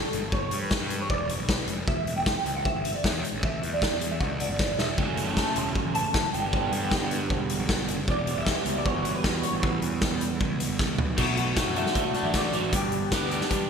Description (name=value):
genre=indie rock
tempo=155 BPM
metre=4/4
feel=straight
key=unclear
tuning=A4 = 440 Hz
part: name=electric guitar through a small old amp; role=melody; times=0.0-13.1 s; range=G4 to B5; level=-31 LUFS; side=equal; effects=ensemble chorus
part: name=fuzz picked electric bass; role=bass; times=0.0-13.4 s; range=E1 to G2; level=-33 LUFS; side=equal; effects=overdrive
part: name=raw garage drum kit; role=drums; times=0.1-13.6 s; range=crash cymbal, hi-hat, kick drum, snare drum, toms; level=-27 LUFS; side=left 1 dB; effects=gated reverb
part: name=electric guitar through a small old amp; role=riff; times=5.0-13.7 s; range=E3 to A4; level=-34 LUFS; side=left 6 dB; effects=lush chorus
part: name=overdriven electric guitar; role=riff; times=5.0-13.7 s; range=F#2 to E4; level=-30 LUFS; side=right 8 dB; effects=ensemble chorus
room=moderate lush hall reverb, RT60 2.1 s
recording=bright 1980s-style digital production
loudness=-24 LUFS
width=side -6 dB against mid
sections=0.0-11.2 A section; 11.2-13.7 B section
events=drum fill 4.6-5.0, 10.8-11.2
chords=0.1 G; 1.9 Em; 5.0 F#m7; 6.3 Gadd9; 8.1 Emadd9; 11.2 Bm7; 12.7 G